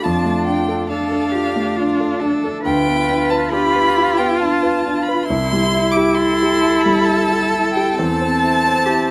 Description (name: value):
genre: classical, slow romantic movement for piano quartet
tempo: 68 BPM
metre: 3/4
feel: rubato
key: C major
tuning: A4 = 439 Hz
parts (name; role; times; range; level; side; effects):
- rich violin; melody; 0.0-9.1 s; F5 to D6; -23 LUFS; equal; none
- rich cello; second line; 0.0-9.1 s; E4 to B4; -24 LUFS; equal; none
- rich viola; accompaniment; 0.0-9.1 s; C4 to F4; -23 LUFS; equal; none
- warm grand piano; accompaniment; 0.0-9.1 s; C2 to C5; -22 LUFS; equal; none
room: light reverb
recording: close, detailed microphones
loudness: -17 LUFS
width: mono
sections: 0.0-9.1 A section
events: none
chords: 0.0 Dm/F; 2.7 Bdim/D; 5.3 C; 8.0 C/E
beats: | 0.04 0.91 1.79 | 2.67 3.54 4.41 | 5.27 6.16 7.05 | 7.95 8.87